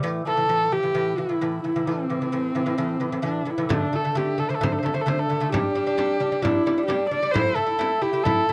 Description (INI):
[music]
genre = mongolian traditional, Mongolian folk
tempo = 131 BPM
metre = 4/4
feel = straight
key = unclear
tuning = A4 = 440 Hz
[part]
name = lute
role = arpeggios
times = 0.0-8.5 s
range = A2 to E4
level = -28 LUFS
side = equal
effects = none
[part]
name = warm horsehead fiddle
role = melody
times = 0.3-8.5 s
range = C4 to D5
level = -26 LUFS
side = equal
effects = none
[part]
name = frame drum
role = percussion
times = 3.7-8.5 s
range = none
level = -30 LUFS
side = equal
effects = none
[sound]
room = light reverb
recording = dry, close 1970s-style studio recording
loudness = -24 LUFS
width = mono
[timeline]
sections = 0.0-3.7 A section; 3.7-8.5 B section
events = none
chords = 0.0 A5; 3.7 D5; 5.5 G5; 7.3 A5